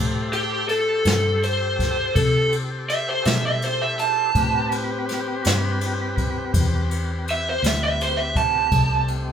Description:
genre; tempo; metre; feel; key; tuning
slow blues; 55 BPM (dotted quarters); 12/8; straight; A minor; A4 = 439 Hz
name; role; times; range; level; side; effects
tonewheel organ; sustained chords; 0.0-9.3 s; A3 to C5; -29 LUFS; left 2 dB; slow rotary speaker, overdrive
vintage muted fingered electric bass; bass; 0.0-9.3 s; C2 to C3; -25 LUFS; equal; none
lead guitar through a small cranked amp; melody; 0.3-9.1 s; G4 to A5; -21 LUFS; right 2 dB; overdrive
jazz brush drum kit; drums; 0.3-9.3 s; kick drum, ride cymbal, snare drum; -26 LUFS; left 1 dB; none
room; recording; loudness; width
moderate studio reverb, RT60 0.7 s; band playing live in one room; -19 LUFS; side -8 dB against mid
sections
0.0-9.3 A section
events
lead electric guitar solo 0.0-9.3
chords
0.0 Am7

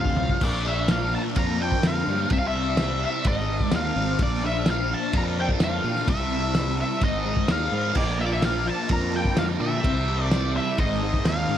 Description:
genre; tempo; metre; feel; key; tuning
psychedelic rock; 127 BPM; 4/4; straight; unclear; A4 = 440 Hz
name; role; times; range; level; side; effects
octave-fuzz lead guitar; melody; 0.0-11.6 s; D5 to Bb5; -28 LUFS; equal; wah, distortion, analog delay
combo organ; sustained chords; 0.0-0.4, 8.0-11.6 s; Eb3 to D5; -36 LUFS; right 5 dB; none
thick fuzz guitar; riff; 0.0-11.6 s; F2 to F4; -28 LUFS; left 1 dB; distortion, phaser
fuzz fingered electric bass; bass; 0.0-11.6 s; Ab1 to Bb2; -28 LUFS; equal; overdrive
analog drone; drone; 0.0-0.5 s; none; barely audible; none; none
cloth-damped thuddy drum kit; drums; 0.1-11.4 s; crash cymbal, kick drum, ride cymbal, snare drum, toms; -26 LUFS; equal; none
room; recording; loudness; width
light reverb, small room ambience; none; -21 LUFS; side -10 dB against mid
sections
0.4-11.6 A section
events
drum fill 0.0-0.4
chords
0.4 Bb; 2.3 C; 3.2 Ab; 4.2 Bb; 6.1 C; 7.0 Ab; 8.0 Bb; 9.8 C; 10.8 Ab

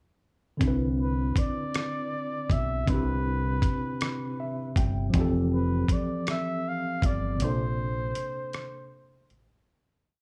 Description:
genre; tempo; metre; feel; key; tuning
slow six-eight R&B; 53 BPM (dotted quarters); 6/8; straight; C major; A4 = 440 Hz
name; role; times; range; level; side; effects
tine electric piano; accompaniment; 0.6-9.7 s; C3 to G5; -33 LUFS; equal; none
deep dub fingered electric bass; bass; 0.6-9.6 s; F1 to C2; -31 LUFS; equal; none
dusty soul sampler-style drum kit; drums; 0.6-9.5 s; hi-hat, kick drum, rim click; -30 LUFS; equal; none
breathy flugelhorn; melody; 1.0-9.3 s; B4 to F5; -36 LUFS; equal; none
room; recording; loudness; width
little or no reverb; studio reverb; -28 LUFS; mono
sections
0.6-9.7 verse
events
tine electric piano fill 4.0-5.1; break 7.4-9.7; fade-out 7.4-9.7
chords
0.6 Cmaj9; 5.1 Fmaj9; 7.4 Bbmaj9

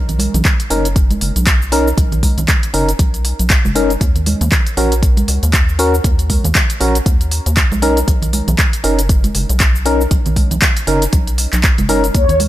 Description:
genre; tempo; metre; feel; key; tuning
deep house; 118 BPM; 4/4; swing 58% on 16ths; B major; A4 = 440 Hz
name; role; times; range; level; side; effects
rubbery square bass; bass; 0.0-12.5 s; F#1 to D#2; -17 LUFS; equal; sidechain pumping
deep house drum kit; drums; 0.1-12.5 s; handclaps, hi-hat, shaker; -19 LUFS; equal; studio ambience
congas; percussion; 0.1-12.5 s; none; -22 LUFS; right 3 dB; none
electronic kick drum; drums; 0.5-12.3 s; none; -14 LUFS; equal; studio ambience
percussive organ stab; stabs; 0.7-12.1 s; C#4 to A#4; -18 LUFS; left 1 dB; chorus, sidechain pumping, dub echo
mellow horn-like synth lead; melody; 12.1-12.4 s; C#5; -14 LUFS; left 2 dB; ensemble chorus
room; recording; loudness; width
little or no reverb; none; -12 LUFS; side -14 dB against mid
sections
0.0-12.5 A section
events
none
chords
0.0 Bmaj9; 4.0 D#m7; 7.8 Bmaj9

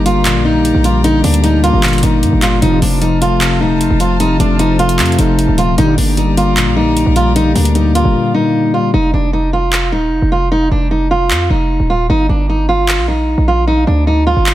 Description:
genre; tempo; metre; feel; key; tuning
hip hop, trap; 152 BPM; 4/4; half-time; G minor; A4 = 442 Hz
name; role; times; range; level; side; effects
fingerpicked steel-string acoustic guitar; melody; 0.0-14.5 s; D4 to F4; -15 LUFS; right 1 dB; low-pass filter, analog delay
mellow tine electric piano; accompaniment; 0.0-9.0 s; Bb2 to Bb3; -16 LUFS; left 5 dB; low-pass filter, analog delay
warm studio string section; sustained chords; 0.0-8.9 s; F4 to Bb5; -25 LUFS; equal; none
hard-hitting 808-style bass; bass; 0.0-14.5 s; Eb1 to G2; -15 LUFS; right 1 dB; none
trap drum kit; drums; 0.1-14.5 s; handclaps, hi-hat; -18 LUFS; equal; none
mellow synth brass; stabs; 2.6-2.8, 5.8-5.9 s; A2 to G3; -22 LUFS; left 1 dB; none
room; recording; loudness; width
digital ambience; echo-heavy mix; -10 LUFS; side -13 dB against mid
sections
0.0-8.9 A section; 8.9-14.5 B section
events
drums muted 8.1-8.9; hi-hats muted 8.9-14.5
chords
0.0 Gm; 2.6 F; 5.8 Gm; 8.9 Ebsus2; 12.1 Gm

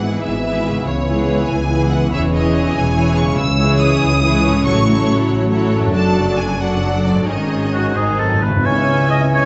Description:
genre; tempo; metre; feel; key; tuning
classical; 86-97 BPM (dotted quarters); 6/8; rubato; C# minor from 3.4 s; A4 = 440 Hz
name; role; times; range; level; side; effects
bright symphonic violin section; melody; 0.0-9.5 s; C#5 to E6; -26 LUFS; equal; none
clear symphonic violin section; second line; 0.0-9.5 s; G#4 to E5; -27 LUFS; equal; none
warm symphonic viola section; accompaniment; 0.0-9.5 s; D#3 to E4; -25 LUFS; equal; none
dark French horn section; sustained chords; 0.0-9.5 s; D#3 to D4; -25 LUFS; equal; none
concert harp; arpeggios; 0.0-9.5 s; F#2 to G#4; -26 LUFS; equal; none
clear chamber double bass section; bass; 0.0-9.5 s; E1 to C#2; -24 LUFS; equal; none
dark chamber cello section; bass; 0.0-9.5 s; C#2 to C#3; -23 LUFS; equal; none
clear clarinet; second line; 7.7-9.5 s; F#4 to D#5; -23 LUFS; equal; none
warm oboe; second line; 7.7-9.5 s; F#4 to D#5; -24 LUFS; equal; none
timpani; percussion; 8.0-8.6 s; G#2; -24 LUFS; equal; none
mellow bassoon; accompaniment; 8.6-9.5 s; E3; -26 LUFS; equal; none
mellow baroque flute; second line; 8.7-9.5 s; G#5; -27 LUFS; equal; none
room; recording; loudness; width
wet scoring stage reverb, RT60 1.6 s; nothing above 7.9 kHz; -16 LUFS; mono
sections
0.0-8.6 A section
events
timpani fill 8.0-8.6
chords
0.0 E/G#; 0.9 C#m7; 2.1 C#m/E; 3.4 C#m; 4.7 A6; 5.9 D/F#; 7.3 G#sus4; 8.0 G#; 8.6 C#m

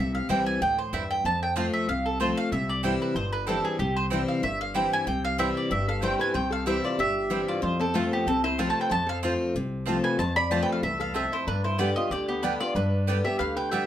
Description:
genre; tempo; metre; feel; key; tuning
bluegrass; 188 BPM; 4/4; swing 54% on 8ths; C major; A4 = 439 Hz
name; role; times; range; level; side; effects
mandolin; melody; 0.0-13.9 s; F4 to B5; -28 LUFS; right 2 dB; plate reverb
picked steel-string acoustic guitar; accompaniment; 0.0-13.9 s; E2 to G4; -28 LUFS; left 2 dB; none
upright bass; bass; 0.0-13.8 s; G1 to G2; -32 LUFS; equal; none
mandolin; stabs; 0.3-13.8 s; B3 to A5; -32 LUFS; right 6 dB; none
lap resonator guitar; second line; 5.7-13.9 s; A3 to D5; -32 LUFS; left 2 dB; none
room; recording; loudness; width
moderate studio reverb, RT60 0.5 s; none; -24 LUFS; side -11 dB against mid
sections
0.0-13.9 A section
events
none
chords
0.0 C; 1.2 F; 2.5 C; 7.6 F; 11.5 G

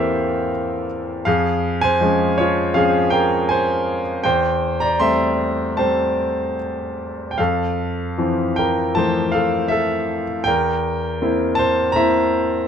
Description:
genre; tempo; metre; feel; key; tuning
classical, lyrical solo piano; 74-84 BPM; 4/4; rubato; F major; A4 = 442 Hz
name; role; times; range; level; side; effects
bright grand piano; solo; 0.0-12.7 s; E2 to C6; -17 LUFS; equal; none
room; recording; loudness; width
light reverb; dark, warm production; -17 LUFS; side -8 dB against mid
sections
0.0-12.7 A section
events
none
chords
0.0 C7/E; 1.3 Dbmaj7/F; 4.2 Am7/E; 7.4 Fmaj7; 10.5 C7/E

